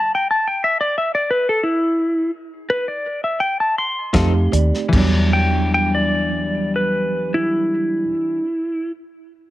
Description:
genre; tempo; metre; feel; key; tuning
straight-eighth soul blues; 74-92 BPM; 4/4; straight; E minor; A4 = 440 Hz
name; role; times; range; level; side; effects
clean lap steel guitar; melody; 0.0-8.9 s; E4 to C6; -18 LUFS; equal; none
tine electric piano; accompaniment; 4.1-8.1 s; F#3 to F5; -22 LUFS; right 3 dB; medium stereo tremolo
direct-recorded clean electric guitar; stabs; 4.1-8.5 s; E3 to A4; -25 LUFS; left 5 dB; none
vintage muted fingered electric bass; bass; 4.1-8.1 s; Eb2 to F2; -19 LUFS; equal; none
warm soul drum kit; drums; 4.1-5.1 s; crash cymbal, hi-hat, kick drum, snare drum; -22 LUFS; equal; none
room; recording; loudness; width
light reverb; none; -17 LUFS; side -16 dB against mid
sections
0.0-4.9 A section; 4.9-8.2 B section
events
slowing down 0.0-4.9; electric slide guitar solo 0.0-4.9; stop 0.0-4.1; tine electric piano fill 3.8-4.9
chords
0.0 N.C.; 4.1 F7; 4.9 Em9

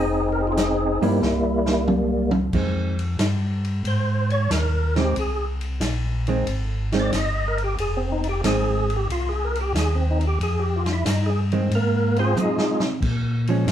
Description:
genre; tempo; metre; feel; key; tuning
soul jazz organ trio; 92 BPM; 4/4; swing 69% on 8ths; F minor; A4 = 442 Hz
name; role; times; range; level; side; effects
percussive tonewheel organ; melody; 0.0-12.8 s; G3 to Eb5; -24 LUFS; equal; slow rotary speaker, overdrive, chorus vibrato
mellow tonewheel organ; bass; 0.0-13.7 s; F1 to C3; -23 LUFS; equal; slow rotary speaker
vintage drum kit; drums; 0.6-13.7 s; crash cymbal, hi-hat, kick drum, ride cymbal, snare drum, toms; -28 LUFS; equal; none
hollow-body jazz guitar; accompaniment; 1.0-13.7 s; Eb3 to E4; -25 LUFS; right 3 dB; none
room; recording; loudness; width
wet club reverb, RT60 0.8 s; heard from further back in the room; -20 LUFS; side -10 dB against mid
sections
0.0-2.5 A section; 2.5-13.7 B section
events
drum fill 1.2-2.5, 12.4-13.0; tonewheel organ solo 2.5-13.7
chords
0.0 F5; 1.2 C7; 2.5 Fm7; 13.0 Bbm7

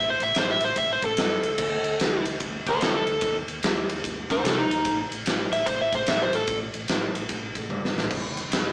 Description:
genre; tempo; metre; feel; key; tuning
blues rock power trio and southern rock; 147 BPM; 4/4; swing 64% on 8ths; unclear; A4 = 440 Hz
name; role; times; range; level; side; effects
overdriven slide guitar; melody; 0.0-6.6 s; Eb4 to E5; -26 LUFS; equal; slapback echo
overdriven fingered electric bass; bass; 0.0-8.7 s; E1 to C3; -40 LUFS; equal; none
huge arena drum kit; drums; 0.2-8.6 s; crash cymbal, kick drum, ride cymbal, snare drum, toms; -29 LUFS; equal; none
room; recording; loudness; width
moderate studio reverb, RT60 0.7 s; band playing live in one room, small speaker sound; -25 LUFS; mono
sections
0.0-8.7 A section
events
electric slide guitar solo 0.0-8.7; drum fill 7.7-8.1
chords
0.0 A5; 1.6 D5; 3.2 N.C.

